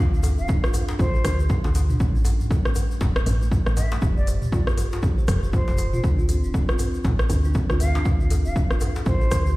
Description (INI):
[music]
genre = afro house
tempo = 119 BPM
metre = 4/4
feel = swing 59% on 16ths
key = D minor pentatonic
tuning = A4 = 440 Hz
[part]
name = kalimba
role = arpeggios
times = 0.0-9.6 s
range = E3 to C5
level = -32 LUFS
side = right 1 dB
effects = sidechain pumping, tape echo
[part]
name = woody FM bass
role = bass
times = 0.0-9.6 s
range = D1 to A2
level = -24 LUFS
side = equal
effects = tube saturation, sidechain pumping
[part]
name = egg shaker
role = percussion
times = 0.1-9.5 s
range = none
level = -42 LUFS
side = left 4 dB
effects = none
[part]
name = afro-pop drum kit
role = drums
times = 0.2-9.4 s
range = hi-hat, rim click, toms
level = -30 LUFS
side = equal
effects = none
[part]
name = djembe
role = percussion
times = 0.2-9.4 s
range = none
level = -31 LUFS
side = left 1 dB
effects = none
[part]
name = concert flute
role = melody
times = 0.4-9.5 s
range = C5 to F5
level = -34 LUFS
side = right 1 dB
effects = tape echo
[part]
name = electronic kick drum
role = drums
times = 0.5-9.4 s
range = none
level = -22 LUFS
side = equal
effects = overdrive
[sound]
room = studio ambience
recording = played on a big sound system in a bare room, large studio reverb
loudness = -19 LUFS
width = side -19 dB against mid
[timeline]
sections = 0.0-9.6 A section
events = none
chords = 0.0 Dm7; 2.0 A7; 4.0 F5; 6.0 Dm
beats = 0.49 1.00 1.50 | 2.00 2.51 3.01 3.52 | 4.02 4.53 5.03 5.53 | 6.04 6.54 7.05 7.55 | 8.05 8.56 9.06